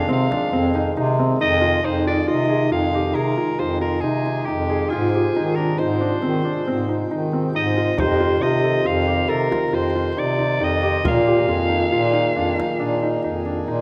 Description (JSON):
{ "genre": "contemporary instrumental, chamber music in an uneven meter", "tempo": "137 BPM", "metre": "7/4", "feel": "straight", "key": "F dorian", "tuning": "A4 = 439 Hz", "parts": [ { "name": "growling soprano saxophone", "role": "melody", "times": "0.0-13.7 s", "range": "G4 to F5", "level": "-26 LUFS", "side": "equal", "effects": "none" }, { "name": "vibraphone with medium mallets", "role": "second line", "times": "0.0-13.8 s", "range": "Eb4 to Ab4", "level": "-27 LUFS", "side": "equal", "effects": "none" }, { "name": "pedal harmonium", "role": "sustained chords", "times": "0.0-13.8 s", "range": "C3 to G5", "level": "-31 LUFS", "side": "equal", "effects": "none" }, { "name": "felt-muted upright piano", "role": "arpeggios", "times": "0.0-13.8 s", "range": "C4 to A4", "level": "-27 LUFS", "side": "equal", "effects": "none" }, { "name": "warm bass clarinet", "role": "bass", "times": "0.0-13.8 s", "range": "F2 to Eb3", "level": "-25 LUFS", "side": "equal", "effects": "none" }, { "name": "frame drum", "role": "percussion", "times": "0.3-1.7, 8.0-13.4 s", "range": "none", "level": "-32 LUFS", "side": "equal", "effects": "none" } ], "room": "wet concert hall reverb, RT60 2.3 s", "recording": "none", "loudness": "-20 LUFS", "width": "mono", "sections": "0.0-1.9 A section; 1.9-13.8 B section", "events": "none", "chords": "0.0 Fm7; 4.9 Abmaj7; 8.0 F7(no3); 11.1 Bb7sus4" }